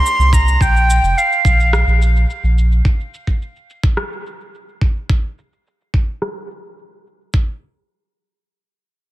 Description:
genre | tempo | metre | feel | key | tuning
sunset chillout | 107 BPM | 4/4 | straight | unclear | A4 = 440 Hz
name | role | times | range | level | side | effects
reedy silver concert flute | melody | 0.0-2.0 s | F5 to C6 | -16 LUFS | right 1 dB | tape echo
dark baby grand piano | accompaniment | 0.0-0.6 s | Bb3 to G4 | -38 LUFS | right 1 dB | auto-pan, low-pass filter, tape echo, slapback echo
electronic shaker and rim click | drums | 0.1-7.3 s | none | -26 LUFS | equal | low-pass filter on hats, low-pass filter on perc, low-pass filter on snare, slapback echo
warm sub bass | bass | 0.2-2.8 s | F1 to C2 | -14 LUFS | equal | none
electronic kick drum | drums | 0.3-7.5 s | none | -15 LUFS | equal | none
room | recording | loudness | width
light reverb | none | -14 LUFS | side -16 dB against mid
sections
0.0-7.3 A section; 7.3-9.1 B section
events
filter sweep on drum 0.0-7.3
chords
0.0 Cm9; 0.6 Bb5; 2.9 N.C.

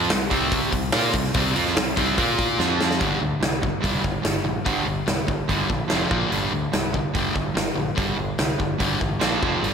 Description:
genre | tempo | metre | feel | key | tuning
hard rock | 145 BPM | 4/4 | straight | G minor | A4 = 440 Hz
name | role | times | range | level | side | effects
overdriven semi-hollow guitar | riff | 0.0-9.7 s | F2 to Bb4 | -25 LUFS | right 8 dB | slapback echo
sludgy distorted guitar | riff | 0.0-9.7 s | F2 to Bb4 | -26 LUFS | left 10 dB | overdrive
growling fingered electric bass | bass | 0.0-9.7 s | F1 to Bb2 | -30 LUFS | left 1 dB | overdrive
big rock drum kit | drums | 0.1-9.7 s | hi-hat, kick drum, snare drum | -25 LUFS | equal | none
room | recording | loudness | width
moderate concert hall reverb, RT60 1.7 s, small room ambience | big arena sound | -20 LUFS | side -6 dB against mid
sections
0.0-3.0 A section; 3.0-9.7 B section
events
drum fill 2.6-3.0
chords
0.0 C5; 2.2 Bb5; 2.6 F5; 3.0 G5; 5.9 F5; 6.1 Bb5; 6.3 G5; 9.2 Bb5; 9.4 F5

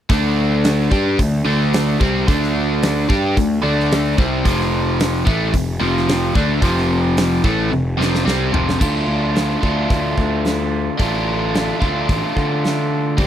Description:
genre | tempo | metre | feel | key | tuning
classic rock | 110 BPM | 4/4 | straight | D minor | A4 = 438 Hz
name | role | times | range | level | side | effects
overdriven electric guitar | riff | 0.1-13.3 s | F2 to G4 | -18 LUFS | equal | none
fuzz picked electric bass | bass | 0.1-13.3 s | F1 to D3 | -21 LUFS | equal | overdrive
big rock drum kit | drums | 0.1-13.3 s | crash cymbal, hi-hat, kick drum, snare drum, toms | -21 LUFS | equal | none
room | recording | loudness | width
little or no reverb | dry, close 1970s-style studio recording | -15 LUFS | side -10 dB against mid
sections
0.1-8.8 A section; 8.8-13.3 B section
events
drum fill 7.7-8.8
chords
0.1 D5; 4.5 F5; 8.8 Dm

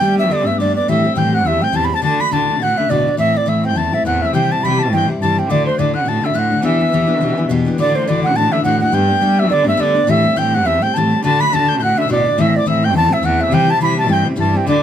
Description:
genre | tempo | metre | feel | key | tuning
celtic folk, Celtic reel | 209 BPM | 4/4 | swing 56% on 8ths | unclear | A4 = 440 Hz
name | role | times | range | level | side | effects
wooden flute | melody | 0.0-14.8 s | C5 to B5 | -17 LUFS | right 3 dB | none
tin whistle | second line | 0.0-14.8 s | C6 to B6 | -23 LUFS | left 7 dB | none
picked steel-string acoustic guitar | accompaniment | 0.0-14.8 s | D2 to G4 | -18 LUFS | left 4 dB | none
warm cello | bass | 0.0-14.8 s | E2 to G3 | -19 LUFS | right 1 dB | none
room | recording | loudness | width
light reverb | none | -13 LUFS | side -9 dB against mid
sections
0.0-7.8 A section; 7.8-14.8 A section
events
none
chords
0.0 Gadd9; 0.9 Am7; 2.0 D; 3.2 Am; 4.3 C; 5.5 D; 6.6 Em7; 7.8 Dadd9; 8.9 Gadd9; 10.1 Am7; 11.2 D; 12.4 Am; 13.5 C

